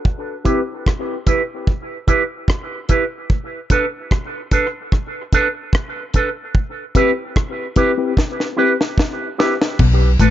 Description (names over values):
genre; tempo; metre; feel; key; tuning
dub reggae; 74 BPM; 4/4; straight; unclear; A4 = 440 Hz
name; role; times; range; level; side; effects
deep reggae drum kit; drums; 0.1-10.3 s; crash cymbal, hi-hat, kick drum, rim click, snare drum; -17 LUFS; equal; none
electric guitar with an envelope filter; accompaniment; 0.4-10.3 s; D4 to B4; -20 LUFS; right 4 dB; high-pass filter, low-pass filter, dub echo
mellow reed electric piano; stabs; 0.4-0.6, 6.9-9.6 s; C4 to B4; -22 LUFS; left 6 dB; fast tremolo, high-pass filter, low-pass filter, dub echo
clean electric guitar; riff; 9.8-10.3 s; A2 to B2; -16 LUFS; left 5 dB; none
warm sub bass; bass; 9.8-10.3 s; A1 to B1; -14 LUFS; equal; none
room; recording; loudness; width
light reverb, small room ambience; echo-heavy mix, nothing above 7.6 kHz; -16 LUFS; side -12 dB against mid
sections
0.0-9.8 A section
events
break 0.0-6.5; drum fill 8.2-9.8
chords
0.0 Cmaj7 (rootless); 3.3 Bm7; 6.5 Cmaj7; 9.8 Bm7